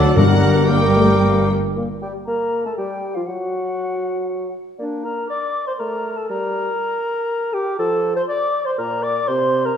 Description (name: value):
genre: quick classical-period movement for symphony orchestra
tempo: 120 BPM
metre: 3/4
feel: rubato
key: G minor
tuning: A4 = 439 Hz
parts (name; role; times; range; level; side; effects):
- hollow concert flute; second line; 0.0-9.8 s; Bb4 to D6; -26 LUFS; left 2 dB; none
- mellow clarinet; second line; 0.0-9.8 s; Bb3 to D5; -23 LUFS; equal; none
- rich chamber violin section; second line; 0.0-1.5 s; F#5 to G5; -28 LUFS; right 2 dB; none
- dark studio viola section; accompaniment; 0.0-1.5 s; Bb4 to D5; -27 LUFS; left 1 dB; none
- mellow bassoon; accompaniment; 0.0-9.7 s; Bb2 to Bb3; -26 LUFS; equal; none
- mellow French horn section; sustained chords; 0.0-1.7 s; F#3 to D4; -21 LUFS; left 4 dB; none
- bright trumpet section; stabs; 0.0-1.5 s; A4 to Bb4; -26 LUFS; right 2 dB; none
- rich studio cello section; bass; 0.0-1.5 s; G2 to D3; -21 LUFS; right 2 dB; none
- rich studio double bass section; bass; 0.0-1.5 s; G1 to D2; -22 LUFS; right 3 dB; none
- rich studio violin section; melody; 0.2-1.5 s; F#5 to G5; -28 LUFS; left 2 dB; none
- timpani; percussion; 0.2-0.9 s; G2; -18 LUFS; left 2 dB; none
room: wet scoring stage reverb, RT60 1.7 s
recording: dark, warm production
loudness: -17 LUFS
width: side -8 dB against mid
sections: 0.0-1.8 A section; 1.8-9.8 A section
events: none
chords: 0.2 Gm; 1.8 N.C.